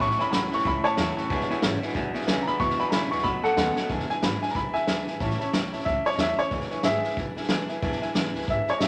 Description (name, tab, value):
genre	rockabilly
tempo	184 BPM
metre	4/4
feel	swing 60% on 8ths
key	E mixolydian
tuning	A4 = 440 Hz
part	clear upright piano	melody	0.0-8.9 s	G#4 to C#6	-28 LUFS	equal	none
part	dark upright piano	accompaniment	0.0-8.9 s	B4 to B5	-37 LUFS	equal	none
part	picked steel-string acoustic guitar	accompaniment	0.0-8.9 s	E2 to F#4	-37 LUFS	equal	none
part	twangy electric guitar	riff	0.0-3.9 s	E2 to G#3	-34 LUFS	equal	none
part	upright bass	bass	0.0-8.9 s	E1 to E2	-38 LUFS	equal	none
part	vintage drum kit	drums	0.0-8.9 s	hi-hat, kick drum, snare drum	-31 LUFS	equal	none
room	wet large studio reverb, RT60 1.3 s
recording	none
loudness	-26 LUFS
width	mono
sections	0.0-3.9 A section; 3.9-8.9 B section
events	drum fill 3.7; upright piano solo 3.9-8.9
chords	0.0 A7; 1.3 E7; 3.3 B7; 3.9 E7; 5.2 A7; 6.5 E7